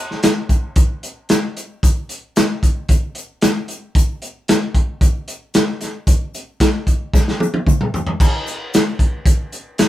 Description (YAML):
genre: rock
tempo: 113 BPM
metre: 4/4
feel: straight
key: none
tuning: none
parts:
  - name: crunchy breakbeat drum kit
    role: drums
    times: 0.1-9.9 s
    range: crash cymbal, hi-hat, kick drum, snare drum, splash cymbal, toms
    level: -15 LUFS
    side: equal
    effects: none
  - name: egg shaker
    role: percussion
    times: 0.2-9.9 s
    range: none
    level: -33 LUFS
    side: left 4 dB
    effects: none
room: moderate studio reverb, RT60 0.5 s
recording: band playing live in one room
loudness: -16 LUFS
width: side -14 dB against mid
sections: 0.0-9.9 A section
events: drum fill 7.1-8.2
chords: none